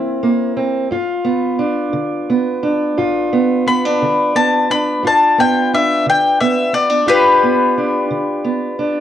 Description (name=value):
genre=acoustic country blues, solo or duo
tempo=59 BPM (dotted quarters)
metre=12/8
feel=straight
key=G mixolydian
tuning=A4 = 445 Hz
part: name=bowl-back mandolin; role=melody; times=0.0-9.0 s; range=E4 to B5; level=-14 LUFS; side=left 3 dB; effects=none
part: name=fingerpicked steel-string acoustic guitar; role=accompaniment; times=0.0-9.0 s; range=G2 to F4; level=-16 LUFS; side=right 2 dB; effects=cassette tape
room=moderate spring reverb, RT60 1.7 s, small room ambience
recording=home recording on cassette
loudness=-13 LUFS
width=side -10 dB against mid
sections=0.0-9.0 A section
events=none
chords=0.0 C7; 0.9 G7